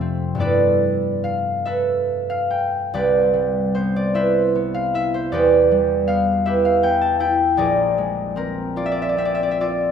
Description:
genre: classical, solo harp piece.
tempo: 42-53 BPM (dotted quarters).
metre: 6/8.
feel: rubato.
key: C major.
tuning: A4 = 440 Hz.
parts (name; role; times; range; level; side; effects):
concert harp; solo; 0.0-9.9 s; Bb1 to A5; -17 LUFS; equal; none.
room: moderate concert hall reverb, RT60 2.4 s.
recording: recorded in a church or concert hall.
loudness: -17 LUFS.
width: side -8 dB against mid.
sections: 0.0-9.9 A section.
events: none.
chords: 0.4 G13; 2.9 Cmaj9; 5.3 Em7; 7.6 Bb9.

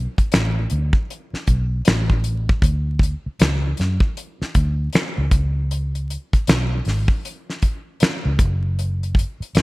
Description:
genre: R&B, neo-soul.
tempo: 78 BPM.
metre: 4/4.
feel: swing 60% on 16ths.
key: unclear.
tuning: A4 = 441 Hz.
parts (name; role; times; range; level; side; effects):
vintage muted fingered electric bass; bass; 0.0-9.6 s; F#1 to F#2; -21 LUFS; equal; none.
damped 70s drum kit; drums; 0.2-9.6 s; finger snaps, hi-hat, kick drum, snare drum; -18 LUFS; equal; gated reverb.
room: little or no reverb.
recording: bright 1980s-style digital production, vinyl crackle.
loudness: -18 LUFS.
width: side -22 dB against mid.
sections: 0.0-9.6 A section.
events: none.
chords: none.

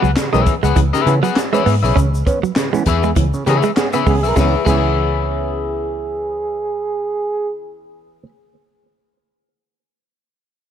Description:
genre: funk.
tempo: 100 BPM.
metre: 4/4.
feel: swing 56% on 16ths.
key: C# minor.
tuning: A4 = 440 Hz.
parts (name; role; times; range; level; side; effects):
electric guitar at the edge of break-up; accompaniment; 0.0-8.3 s; G#4 to F#5; -20 LUFS; left 9 dB; wide subtle chorus.
direct-recorded clean electric guitar; riff; 0.0-4.8 s; E3 to C#4; -22 LUFS; right 10 dB; none.
vintage muted fingered electric bass; bass; 0.0-8.2 s; B1 to C#3; -18 LUFS; equal; none.
tube shaker; percussion; 0.0-4.8 s; none; -38 LUFS; left 6 dB; none.
overdriven clav; stabs; 0.2-8.2 s; C#3 to C#4; -23 LUFS; right 4 dB; phaser, tape echo.
compact cocktail drum kit; drums; 0.2-4.8 s; crash cymbal, handclaps, hi-hat, kick drum, snare drum; -20 LUFS; left 1 dB; none.
breathy trombone; second line; 3.0-7.5 s; G#4; -22 LUFS; right 3 dB; tube saturation.
room: light reverb, small room reverb.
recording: dark, warm production.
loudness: -14 LUFS.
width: side -9 dB against mid.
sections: 0.0-4.4 A section; 4.4-6.8 B section.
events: band accent 2.0-4.4.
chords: 0.0 C#m7.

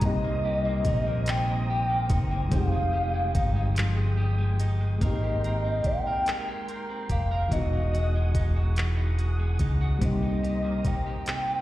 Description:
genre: slow six-eight R&B.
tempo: 48 BPM (dotted quarters).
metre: 6/8.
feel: straight.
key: Ab major.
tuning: A4 = 441 Hz.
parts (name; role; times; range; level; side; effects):
hollow clarinet-like synth lead; melody; 0.0-11.6 s; Eb5 to G5; -30 LUFS; left 1 dB; chorus, slapback echo.
electric guitar at the edge of break-up; second line; 0.0-11.6 s; C3 to Bb4; -36 LUFS; right 4 dB; lush chorus, slapback echo.
overdriven reed electric piano; accompaniment; 0.0-11.6 s; E3 to G4; -36 LUFS; left 3 dB; fast tremolo, slapback echo.
tonewheel organ; sustained chords; 0.0-11.6 s; Ab3 to D#6; -40 LUFS; left 1 dB; chorus vibrato, slow rotary speaker.
mellow fretless electric bass; bass; 0.0-10.9 s; E1 to Db2; -26 LUFS; equal; none.
smooth R&B drum kit; drums; 0.0-11.5 s; handclaps, hi-hat, kick drum; -28 LUFS; equal; none.
room: digital ambience.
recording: live gig heard through the venue's PA, recital hall reverb.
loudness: -24 LUFS.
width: side -15 dB against mid.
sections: 0.0-5.0 A section; 5.0-11.6 B section.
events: kick muted 3.8-5.0.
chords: 0.0 Cm7; 2.5 Fm9; 5.0 Abmaj9; 7.5 Emaj9; 10.0 Cm7.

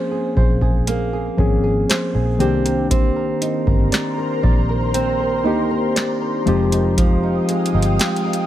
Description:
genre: contemporary R&B.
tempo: 59 BPM.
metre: 4/4.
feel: straight.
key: unclear.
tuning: A4 = 441 Hz.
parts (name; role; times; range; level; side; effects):
muted felt-like synth keys; accompaniment; 0.0-8.5 s; Eb3 to Ab4; -20 LUFS; left 2 dB; chorus.
flamenco guitar; arpeggios; 0.0-8.5 s; F3 to D5; -24 LUFS; right 5 dB; tape echo.
vintage muted fingered electric bass; bass; 0.4-8.0 s; F1 to D2; -21 LUFS; equal; none.
booming analog drum machine; drums; 0.4-8.5 s; hi-hat, kick drum, snare drum; -18 LUFS; equal; none.
ethereal airy pad; sustained chords; 3.4-8.5 s; Ab3 to Eb6; -25 LUFS; left 1 dB; ensemble chorus, built-in reverb.
room: digital ambience.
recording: none.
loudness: -16 LUFS.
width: side -12 dB against mid.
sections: 0.0-8.5 A section.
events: none.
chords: 0.0 Bbm9; 2.4 Cm9; 6.5 Fm9.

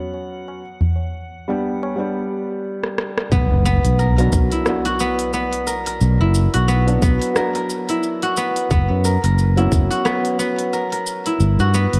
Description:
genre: organic downtempo.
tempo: 89 BPM.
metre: 4/4.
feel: swing 57% on 16ths.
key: B harmonic minor.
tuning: A4 = 440 Hz.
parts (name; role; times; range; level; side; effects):
felt-muted upright piano; accompaniment; 0.0-11.4 s; F#3 to G4; -27 LUFS; equal; sidechain pumping, delay.
drifting glass-harmonics texture; texture; 0.0-2.0 s; F#5; -44 LUFS; equal; chorus, built-in reverb.
tabla; percussion; 0.1-1.9 s; none; -25 LUFS; equal; none.
organic electronic drum kit; drums; 2.8-12.0 s; hi-hat, rim click, shaker; -28 LUFS; equal; none.
guzheng; arpeggios; 3.3-12.0 s; B3 to A#4; -24 LUFS; equal; delay.
sustaining fretless electric bass; bass; 3.3-12.0 s; F#1 to G2; -18 LUFS; equal; sidechain pumping.
electronic kick drum; drums; 3.3-9.9 s; none; -19 LUFS; equal; none.
impact; sound effects; 3.3-6.0 s; none; -26 LUFS; equal; none.
room: moderate echo chamber reverb, RT60 2.6 s.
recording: dark, warm production.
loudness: -19 LUFS.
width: mono.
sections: 0.0-3.3 A section; 3.3-12.0 B section.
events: drum fill 2.8-3.3; impact 3.3-6.0.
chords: 0.0 F#sus4; 0.6 G; 3.3 Bm; 8.7 F#sus4; 11.4 G.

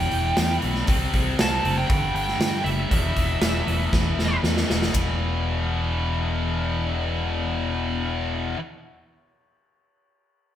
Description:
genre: hard rock.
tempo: 118 BPM.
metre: 4/4.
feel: straight.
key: E minor.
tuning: A4 = 438 Hz.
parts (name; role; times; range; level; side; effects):
high-gain lead guitar; melody; 0.0-4.4 s; E5 to A5; -27 LUFS; right 2 dB; distortion.
scooped high-gain guitar; riff; 0.0-8.6 s; E2 to C4; -31 LUFS; right 5 dB; distortion.
tight distorted guitar; riff; 0.0-8.6 s; E2 to C4; -28 LUFS; left 6 dB; distortion.
fingered electric bass; bass; 0.0-8.5 s; E1 to G2; -26 LUFS; equal; none.
big rock drum kit; drums; 0.1-5.1 s; hi-hat, kick drum, ride cymbal, snare drum; -24 LUFS; equal; none.
room: moderate stone room reverb, RT60 1.3 s.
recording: band playing live in one room.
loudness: -21 LUFS.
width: side -11 dB against mid.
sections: 0.0-4.9 A section; 4.9-9.0 B section.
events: drum fill 3.9-4.9.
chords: 0.0 Em; 0.9 C5; 1.9 G5; 2.9 E5.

